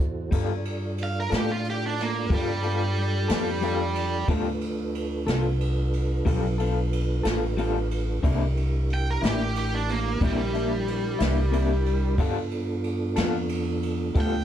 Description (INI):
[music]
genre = slow blues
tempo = 61 BPM (dotted quarters)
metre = 12/8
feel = straight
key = G mixolydian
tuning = A4 = 439 Hz
[part]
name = mellow tonewheel organ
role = sustained chords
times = 0.0-14.4 s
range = B3 to D5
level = -32 LUFS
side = right 3 dB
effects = chorus vibrato, stopped rotary speaker
[part]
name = upright bass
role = bass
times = 0.0-14.4 s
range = A1 to A2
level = -27 LUFS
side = equal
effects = none
[part]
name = electric guitar through a small old amp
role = accompaniment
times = 0.3-14.4 s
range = C3 to A4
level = -31 LUFS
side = left 4 dB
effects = tremolo
[part]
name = jazz brush drum kit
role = drums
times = 0.3-14.3 s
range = crash cymbal, kick drum, ride cymbal, snare drum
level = -30 LUFS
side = equal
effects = none
[part]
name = overdriven electric guitar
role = melody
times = 1.0-14.4 s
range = G3 to G5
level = -29 LUFS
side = right 2 dB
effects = none
[sound]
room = small room ambience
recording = dark, warm production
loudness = -23 LUFS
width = side -10 dB against mid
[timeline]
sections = 0.3-14.4 A section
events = overdriven electric guitar solo 0.3-14.4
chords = 0.3 G9; 8.2 C9; 12.2 G9